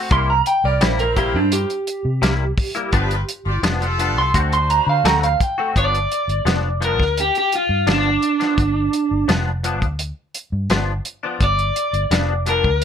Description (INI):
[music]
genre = straight-eighth soul blues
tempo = 85 BPM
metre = 4/4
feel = straight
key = unclear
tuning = A4 = 440 Hz
[part]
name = direct-recorded clean electric guitar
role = stabs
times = 0.0-12.7 s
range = G2 to F#4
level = -23 LUFS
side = left 4 dB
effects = ensemble chorus
[part]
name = electric guitar at the edge of break-up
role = second line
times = 0.1-5.7 s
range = D4 to C6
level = -20 LUFS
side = right 3 dB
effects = none
[part]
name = clear horn section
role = sustained chords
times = 0.1-5.5 s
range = D4 to D5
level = -27 LUFS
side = left 1 dB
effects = none
[part]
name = vintage muted fingered electric bass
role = bass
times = 0.1-12.8 s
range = F1 to D3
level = -21 LUFS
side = equal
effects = none
[part]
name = warm soul drum kit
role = drums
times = 0.1-12.8 s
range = hi-hat, kick drum, snare drum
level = -22 LUFS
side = equal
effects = none
[part]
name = overdriven semi-hollow guitar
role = melody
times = 5.8-12.8 s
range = D4 to D5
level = -19 LUFS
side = equal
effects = slapback echo
[sound]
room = light reverb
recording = none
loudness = -16 LUFS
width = side -8 dB against mid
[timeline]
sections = 0.0-5.8 A section; 5.8-12.8 B section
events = clean electric guitar solo 0.0-5.8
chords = 0.1 C7; 2.9 G7; 4.3 D7; 5.8 G7